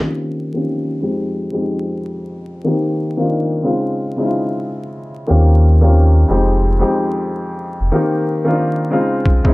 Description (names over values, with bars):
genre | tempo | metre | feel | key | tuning
hip hop, boom-bap hip-hop | 91 BPM | 4/4 | swing 58% on 16ths | F minor | A4 = 440 Hz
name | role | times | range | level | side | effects
dark upright piano | accompaniment | 0.0-9.5 s | F2 to G4 | -17 LUFS | left 1 dB | high-pass filter, low-pass filter
sub bass with octave | bass | 5.3-7.9 s | F1 to Eb2 | -11 LUFS | equal | none
electronic kick drum | drums | 9.3-9.5 s | none | -14 LUFS | equal | overdrive
room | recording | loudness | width
moderate studio reverb, RT60 0.7 s | dark, warm production, vinyl crackle | -14 LUFS | side -21 dB against mid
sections
0.0-9.5 A section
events
filter sweep on upright piano 0.0-9.5; drum fill 9.3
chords
0.0 Eb13; 1.0 Fm9; 2.7 Cm7/Eb; 3.7 Dbmaj9; 5.3 Eb13; 6.3 Fm9; 7.9 Cm7/Eb; 8.9 Dbmaj9